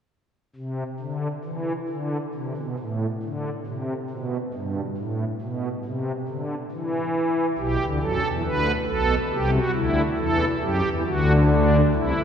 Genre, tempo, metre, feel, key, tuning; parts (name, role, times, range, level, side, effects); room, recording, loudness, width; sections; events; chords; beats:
classical, baroque-style 3-part fugue for pipe organ; 69 BPM; 4/4; straight; A4 = 440 Hz
pipe organ, strings celeste; solo; 0.6-12.2 s; B1 to B4; -22 LUFS; equal
wet cathedral reverb, RT60 5.0 s; heard from further back in the room; -22 LUFS; side -8 dB against mid
0.6-12.2 A section
0.6 N.C.; 7.6 G/B; 9.3 Am7/C; 11.1 D7
| 0.55 1.45 2.34 3.22 | 4.10 4.97 5.85 6.71 | 7.58 8.45 9.32 10.19 | 11.05 11.93